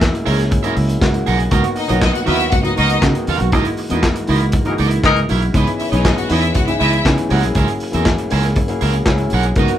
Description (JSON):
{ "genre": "disco", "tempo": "119 BPM", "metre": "4/4", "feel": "straight", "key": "unclear", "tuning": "A4 = 438 Hz", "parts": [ { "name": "electric guitar at the edge of break-up", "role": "accompaniment", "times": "0.0-9.7 s", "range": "E4 to F#5", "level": "-22 LUFS", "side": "right 6 dB", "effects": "none" }, { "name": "warm concert grand piano", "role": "accompaniment", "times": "0.0-9.8 s", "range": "C#3 to A#4", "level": "-21 LUFS", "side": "left 2 dB", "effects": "none" }, { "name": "fingered electric bass", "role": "bass", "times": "0.0-9.7 s", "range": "B1 to C#3", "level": "-18 LUFS", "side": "equal", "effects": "none" }, { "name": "vintage drum kit", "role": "drums", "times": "0.0-9.8 s", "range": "handclaps, hi-hat, kick drum, snare drum", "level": "-20 LUFS", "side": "equal", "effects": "none" }, { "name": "clear studio string section", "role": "second line", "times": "1.8-7.0 s", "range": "C#4 to F#5", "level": "-19 LUFS", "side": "left 2 dB", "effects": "none" }, { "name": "bright horn section", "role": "stabs", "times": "4.7-5.2 s", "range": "E3 to A#4", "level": "-16 LUFS", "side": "left 4 dB", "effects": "none" } ], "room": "moderate studio reverb, RT60 0.5 s", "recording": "band playing live in one room", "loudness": "-14 LUFS", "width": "side -11 dB against mid", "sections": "0.0-9.8 A section", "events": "band accent 3.5-5.5", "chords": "0.0 F#9; 1.5 Bmaj7; 3.5 F#13/C#; 5.5 C#m9; 7.3 F#9" }